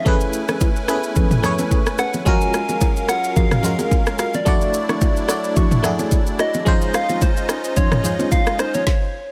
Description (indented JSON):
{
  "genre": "amapiano",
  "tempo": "109 BPM",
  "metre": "4/4",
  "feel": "swing 55% on 16ths",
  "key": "unclear",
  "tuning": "A4 = 439 Hz",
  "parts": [
    { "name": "soft struck synth lead", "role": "melody", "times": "0.0-9.3 s", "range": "C5 to Ab5", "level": "-27 LUFS", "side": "equal", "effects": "chorus, digital delay" },
    { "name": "barking FM electric piano", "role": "accompaniment", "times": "0.0-8.9 s", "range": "Ab3 to D5", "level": "-27 LUFS", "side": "equal", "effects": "chorus, tremolo" },
    { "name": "musette accordion", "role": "sustained chords", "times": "0.0-8.8 s", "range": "Gb3 to G#5", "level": "-31 LUFS", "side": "equal", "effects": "sidechain pumping" },
    { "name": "deep mellow chord stab", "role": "stabs", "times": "0.1-8.7 s", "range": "C#4 to C#6", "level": "-30 LUFS", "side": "equal", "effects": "chorus, digital delay" },
    { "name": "deep house drum kit", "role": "drums", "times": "0.1-9.0 s", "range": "kick drum, rim click, shaker, snare drum, toms", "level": "-21 LUFS", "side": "equal", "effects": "none" },
    { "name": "congas and bongos", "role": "percussion", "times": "0.1-8.9 s", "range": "none", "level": "-27 LUFS", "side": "equal", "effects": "none" }
  ],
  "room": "little or no reverb",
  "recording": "none",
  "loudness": "-19 LUFS",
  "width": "mono",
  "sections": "0.0-9.3 A section",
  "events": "stop 8.9-9.3",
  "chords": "0.1 Amaj9; 2.3 Gbmaj9; 4.5 Dmaj9; 6.7 Dbmaj9"
}